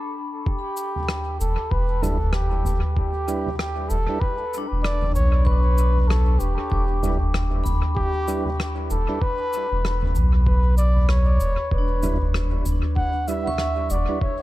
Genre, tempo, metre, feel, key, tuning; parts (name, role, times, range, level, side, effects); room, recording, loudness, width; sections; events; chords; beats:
ambient dub; 96 BPM; 4/4; swing 59% on 16ths; E dorian; A4 = 439 Hz
vibraphone with medium hard mallets; arpeggios; 0.0-14.4 s; D4 to D6; -33 LUFS; left 5 dB; tape echo
trumpet with bucket mute; melody; 0.5-14.4 s; G4 to F#5; -27 LUFS; equal; dub echo
electronic kick drum; drums; 0.5-14.4 s; -24 LUFS; equal
soft-mallet drum kit; drums; 0.8-14.1 s; cabasa, rim click, toms; -27 LUFS; equal; dub echo
soft dub sub bass; bass; 1.4-14.1 s; E1 to B1; -20 LUFS; equal; tube saturation
mellow tonewheel organ; stabs; 2.0-14.2 s; G3 to B4; -32 LUFS; right 4 dB; overdrive, fast rotary speaker, dub echo
small room ambience; echo-heavy mix; -20 LUFS; side -16 dB against mid
0.5-14.4 A section
break 0.0-0.5
0.5 Em7
| 0.47 1.09 1.72 2.34 | 2.97 3.59 4.22 4.84 | 5.47 6.09 6.72 7.34 | 7.97 8.59 9.22 9.84 | 10.47 11.09 11.72 12.34 | 12.97 13.59 14.22